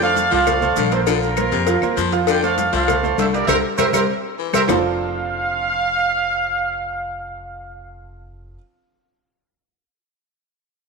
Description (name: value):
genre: latin, salsa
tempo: 199 BPM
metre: 4/4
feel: straight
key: F major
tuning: A4 = 444 Hz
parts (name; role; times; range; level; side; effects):
- mellow trumpet section; melody; 0.0-7.9 s; F4 to G5; -20 LUFS; right 2 dB; slapback echo
- growling baritone saxophone; second line; 0.0-4.8 s; C3 to F3; -24 LUFS; left 8 dB; none
- bright grand piano; accompaniment; 0.0-8.6 s; F3 to F5; -23 LUFS; right 9 dB; none
- upright bass; bass; 0.0-8.6 s; F1 to F2; -27 LUFS; equal; none
- congas; percussion; 0.0-4.8 s; none; -30 LUFS; left 14 dB; none
- maracas; percussion; 0.0-4.8 s; none; -36 LUFS; right 13 dB; none
- cowbell and bongos; percussion; 0.2-4.8 s; none; -25 LUFS; left 11 dB; none
- claves; percussion; 0.5-4.8 s; none; -31 LUFS; left 14 dB; none
room: wet echo chamber reverb, RT60 2.1 s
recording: 1960s-style stereo with parts hard left and right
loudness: -16 LUFS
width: side -4 dB against mid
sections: 0.0-4.7 A section; 4.7-7.1 B section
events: band accent 3.5-4.7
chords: 0.0 F6; 1.1 Bbsus2; 2.3 F6; 3.5 C7; 4.7 F6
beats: 0.17 0.47 0.77 | 1.07 1.37 1.67 1.98 | 2.28 2.58 2.88 3.18 | 3.48 3.78 4.09 4.39 | 4.69 4.99 5.29 5.59 | 5.89 6.20 6.50 6.80